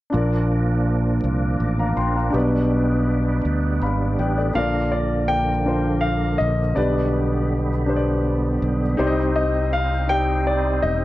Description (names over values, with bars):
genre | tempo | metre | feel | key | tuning
gospel | 54 BPM (dotted quarters) | 6/8 | straight | Bb major | A4 = 440 Hz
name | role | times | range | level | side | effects
warm concert grand piano | accompaniment | 0.1-11.0 s | Bb2 to C6 | -24 LUFS | left 2 dB | none
bright tonewheel organ | sustained chords | 0.1-11.0 s | D3 to Eb4 | -26 LUFS | right 2 dB | slow rotary speaker, chorus vibrato
modern bright fingered electric bass | bass | 0.1-11.0 s | E1 to D2 | -22 LUFS | equal | none
clear grand piano | melody | 4.6-11.0 s | D5 to G5 | -23 LUFS | left 2 dB | none
room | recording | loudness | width
moderate large studio reverb, RT60 0.9 s, studio reverb | worn, warbling old tape, cassette tape, warbly pitch drift | -18 LUFS | side -16 dB against mid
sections
0.1-4.6 A section; 4.6-11.0 B section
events
none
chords
0.1 Bb; 2.3 G/B; 4.6 Bb; 6.8 G/B; 9.0 Cm